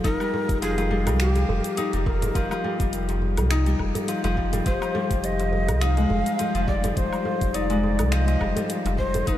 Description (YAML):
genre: organic downtempo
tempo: 104 BPM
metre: 4/4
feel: swing 55% on 16ths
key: F dorian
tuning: A4 = 443 Hz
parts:
  - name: breathy mellow Native American-style cedar flute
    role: melody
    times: 0.0-9.4 s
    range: G4 to F5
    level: -29 LUFS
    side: equal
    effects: analog delay
  - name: Celtic harp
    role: arpeggios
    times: 0.0-9.4 s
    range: F3 to Eb4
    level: -26 LUFS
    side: left 2 dB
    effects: analog delay
  - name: warm sub bass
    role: bass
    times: 0.0-9.4 s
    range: F1 to C2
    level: -24 LUFS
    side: equal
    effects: tube saturation, sidechain pumping
  - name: afro-pop drum kit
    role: drums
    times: 0.0-9.4 s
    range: cabasa, finger snaps, hi-hat, woodblock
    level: -35 LUFS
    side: left 1 dB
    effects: small room ambience
  - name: electronic kick drum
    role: drums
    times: 0.0-9.4 s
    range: none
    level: -28 LUFS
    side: equal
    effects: small room ambience
  - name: djembe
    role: percussion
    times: 0.3-9.3 s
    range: none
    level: -34 LUFS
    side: right 3 dB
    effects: none
room: moderate huge ambient reverb, RT60 9.3 s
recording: dreamy mix soaked in reverb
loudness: -21 LUFS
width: side -12 dB against mid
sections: 0.0-9.4 A section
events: none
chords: 0.0 Cm7/F; 4.7 Fm7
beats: | 0.04 0.62 1.20 1.77 | 2.35 2.93 3.50 4.08 | 4.66 5.24 5.81 6.39 | 6.97 7.54 8.12 8.70 | 9.27